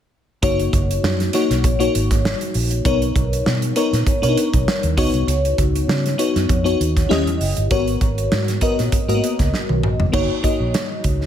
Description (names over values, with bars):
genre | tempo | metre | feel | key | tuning
polished 1980s jazz-funk pop | 99 BPM | 4/4 | swing 54% on 16ths | F# major | A4 = 442 Hz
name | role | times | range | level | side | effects
bell-like FM electric piano | accompaniment | 0.4-11.3 s | A#3 to D#5 | -20 LUFS | left 2 dB | analog chorus
vintage muted fingered electric bass | bass | 0.4-11.3 s | E#1 to C#3 | -21 LUFS | right 1 dB | none
modern studio drum kit | drums | 0.4-11.3 s | crash cymbal, hi-hat, kick drum, snare drum, toms | -21 LUFS | right 1 dB | none
room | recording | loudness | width
light reverb, studio reverb | none | -16 LUFS | side -10 dB against mid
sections
0.4-10.1 A section; 10.1-11.3 B section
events
drum fill 9.5-10.1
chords
0.4 F#6; 2.8 Bmaj9; 5.0 C#9sus4; 7.1 D#7b9; 7.7 G#m11; 10.1 F#6